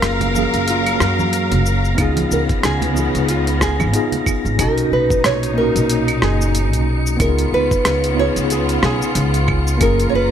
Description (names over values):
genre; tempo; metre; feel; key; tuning
sunset chillout; 92 BPM; 4/4; swing 57% on 16ths; unclear; A4 = 441 Hz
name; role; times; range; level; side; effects
nylon-string guitar; melody; 0.0-10.3 s; E#4 to C#5; -22 LUFS; right 2 dB; tape echo
mellow tine electric piano; accompaniment; 0.0-10.3 s; A#2 to E#5; -21 LUFS; right 1 dB; fast stereo tremolo, auto-pan
clear studio string section; sustained chords; 0.0-10.3 s; A#2 to A#5; -24 LUFS; left 1 dB; none
upright bass; bass; 0.0-10.3 s; F#1 to F#2; -20 LUFS; equal; none
dusty soul sampler-style drum kit; drums; 0.0-10.1 s; cabasa, claves, hi-hat, rim click; -23 LUFS; equal; overdrive
wind-like tuned noise texture; texture; 0.0-10.3 s; A#6 to C#7; -30 LUFS; left 1 dB; built-in reverb
congas; percussion; 0.2-4.2 s; none; -26 LUFS; right 4 dB; none
electronic kick drum; drums; 2.0-10.0 s; none; -21 LUFS; equal; overdrive
room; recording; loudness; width
light reverb, small room ambience; none; -14 LUFS; side -9 dB against mid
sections
0.0-4.6 A section; 4.6-10.3 B section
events
none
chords
0.0 F#maj7; 2.0 C#7; 4.6 Bmaj9; 7.2 C#7; 9.8 F#maj7